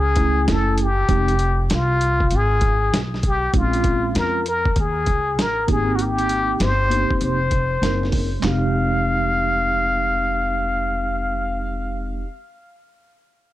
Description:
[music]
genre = hip hop, jazz-hop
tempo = 98 BPM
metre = 4/4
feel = swing 64% on 16ths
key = F minor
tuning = A4 = 439 Hz
[part]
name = trumpet with plunger mute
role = melody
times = 0.0-11.7 s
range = F4 to F5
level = -22 LUFS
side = left 2 dB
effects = tape echo
[part]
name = upright bass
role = bass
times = 0.0-12.2 s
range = F1 to F2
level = -23 LUFS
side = equal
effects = none
[part]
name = mellow tine electric piano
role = accompaniment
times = 0.2-12.3 s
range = Ab3 to Ab5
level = -25 LUFS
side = right 2 dB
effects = medium stereo tremolo
[part]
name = lo-fi sampler-style drum kit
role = drums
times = 0.2-8.6 s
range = handclaps, hi-hat, kick drum, snare drum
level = -23 LUFS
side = equal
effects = overdrive
[sound]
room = light reverb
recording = dark, warm production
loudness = -18 LUFS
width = side -14 dB against mid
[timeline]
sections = 0.0-8.4 A section; 8.4-10.9 B section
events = none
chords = 0.0 Gbm7; 1.1 Fm; 3.5 Bbm7; 5.7 Abmaj7; 8.4 Fm7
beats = 0.47 | 1.09 1.70 2.31 2.92 | 3.54 4.15 4.76 5.37 | 5.99 6.60 7.21 7.82 | 8.43 9.05 9.66 10.27

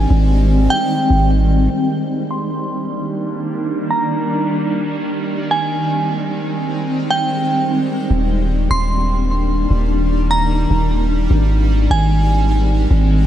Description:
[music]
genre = hip hop, atmospheric cloud-rap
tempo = 150 BPM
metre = 4/4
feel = half-time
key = Eb major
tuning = A4 = 440 Hz
[part]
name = shimmering ambient pad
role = sustained chords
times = 0.0-13.3 s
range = Eb3 to D4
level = -19 LUFS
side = equal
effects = chorus, built-in reverb, low-pass filter
[part]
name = long sustained 808-style bass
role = bass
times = 0.0-1.7, 8.1-13.3 s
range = Eb1 to Ab1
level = -15 LUFS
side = equal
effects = none
[part]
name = glassy synth bell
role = melody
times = 0.7-12.5 s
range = G5 to C6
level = -22 LUFS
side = right 1 dB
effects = chorus, low-pass filter, tape echo
[sound]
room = light reverb, digital ambience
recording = none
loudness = -15 LUFS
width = side -11 dB against mid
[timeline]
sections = 0.0-1.7 A section; 1.7-8.1 B section; 8.1-13.3 C section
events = filter sweep 1.7-8.1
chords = 0.0 Abmaj7; 1.7 Ebmaj7; 4.9 Abmaj7; 8.1 Ebmaj7; 11.3 Abmaj7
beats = | 0.10 0.51 0.91 1.30 | 1.71 2.10 2.50 2.90 | 3.31 3.71 4.11 4.50 | 4.91 5.30 5.71 6.11 | 6.50 6.91 7.30 7.71 | 8.11 8.51 8.90 9.30 | 9.71 10.11 10.51 10.90 | 11.30 11.71 12.11 12.51 | 12.90

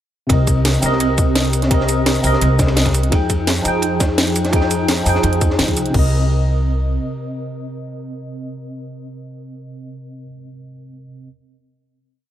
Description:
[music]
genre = liquid drum and bass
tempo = 170 BPM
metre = 4/4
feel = straight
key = C minor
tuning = A4 = 441 Hz
[part]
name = tine electric piano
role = accompaniment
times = 0.3-11.3 s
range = C3 to G5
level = -20 LUFS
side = equal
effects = phaser, digital delay
[part]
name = upright bass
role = bass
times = 0.3-7.0 s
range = C2 to F2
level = -19 LUFS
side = equal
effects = none
[part]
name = crunchy breakbeat drum kit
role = drums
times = 0.3-5.9 s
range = ride cymbal, snare drum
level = -26 LUFS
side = equal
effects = high-pass filter on cymbals, high-pass filter on snare, high-pass filter on room
[part]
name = drum and bass drum kit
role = drums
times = 0.3-6.0 s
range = cabasa, crash cymbal, hi-hat, snare drum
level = -21 LUFS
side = right 1 dB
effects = overdrive
[part]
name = electronic kick drum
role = drums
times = 0.3-6.0 s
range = none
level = -17 LUFS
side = equal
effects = overdrive
[sound]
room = light reverb, studio ambience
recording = none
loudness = -14 LUFS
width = side -11 dB against mid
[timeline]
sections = 0.3-5.9 drop; 5.9-8.8 final chord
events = drop 0.3-5.9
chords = 0.3 Cm7; 3.1 Fm9; 5.9 Cm7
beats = | 0.30 0.65 1.00 1.36 | 1.71 2.06 2.42 2.77 | 3.12 3.47 3.83 4.18 | 4.53 4.88 5.24 5.59 | 5.94 6.30 6.65 7.00 | 7.36 7.71 8.06 8.41

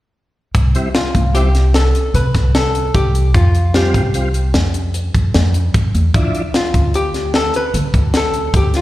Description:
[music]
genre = progressive instrumental, band music in an uneven meter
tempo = 150 BPM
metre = 7/4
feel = straight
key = unclear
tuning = A4 = 440 Hz
[part]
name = tight funk drum kit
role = drums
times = 0.5-8.8 s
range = hi-hat, kick drum, snare drum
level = -18 LUFS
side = equal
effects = none
[part]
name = upright bass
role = bass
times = 0.6-8.8 s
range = C2 to D3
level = -15 LUFS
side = equal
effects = none
[part]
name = tonewheel organ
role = accompaniment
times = 0.8-6.4 s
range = F3 to F4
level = -21 LUFS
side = equal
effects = chorus vibrato, fast rotary speaker, slapback echo
[part]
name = archtop guitar, miked and amplified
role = melody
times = 0.9-8.8 s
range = F4 to B4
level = -19 LUFS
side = left 2 dB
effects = slapback echo, tape echo
[sound]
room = light reverb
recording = live gig heard through the venue's PA, recital hall reverb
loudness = -13 LUFS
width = side -16 dB against mid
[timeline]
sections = 0.5-8.8 A section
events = none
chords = 0.5 C; 3.3 Fsus2; 6.1 Dmadd9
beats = | 0.55 0.95 1.35 1.75 2.15 2.55 2.95 | 3.35 3.75 4.14 4.54 4.94 5.34 5.74 | 6.14 6.54 6.94 7.34 7.74 8.14 8.54

